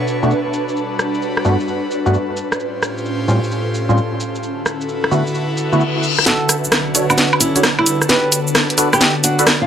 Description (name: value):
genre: UK garage, two-step garage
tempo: 131 BPM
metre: 4/4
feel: swing 66% on 16ths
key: B minor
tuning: A4 = 440 Hz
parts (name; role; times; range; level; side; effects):
- airy breathy pad; sustained chords; 0.0-9.7 s; A2 to C#5; -24 LUFS; equal; chorus
- ethereal airy pad; texture; 0.0-9.7 s; D3 to A5; -22 LUFS; equal; ensemble chorus, built-in reverb, phaser
- garage drum kit; drums; 0.1-9.6 s; cabasa, hi-hat, rim click, snare drum, woodblock; -16 LUFS; equal; low-pass filter on perc, low-pass filter on snare, low-pass filter on hats
- percussive organ stab; stabs; 0.2-9.5 s; G2 to C#5; -18 LUFS; equal; ensemble chorus, tape echo
- reverse cymbal; sound effects; 5.7-6.3 s; none; -20 LUFS; left 7 dB; none
- flamenco guitar; melody; 6.3-9.7 s; G3 to B4; -19 LUFS; right 1 dB; vintage 12-bit sampler grit, analog delay
- soft dub sub bass; bass; 6.3-9.4 s; G1 to B1; -38 LUFS; equal; none
room: light reverb, digital ambience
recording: dry, gritty hardware recording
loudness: -14 LUFS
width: side -9 dB against mid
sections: 0.0-6.3 A section; 6.3-9.7 B section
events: reverse cymbal 5.7-6.3; build-up 6.3-9.7; drum fill 6.3-9.7; filter sweep on synth stab 6.3-9.7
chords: 0.0 Bm9; 0.5 Gmaj7; 2.4 A7alt; 4.4 D69; 6.3 Bm9; 7.9 Gmaj7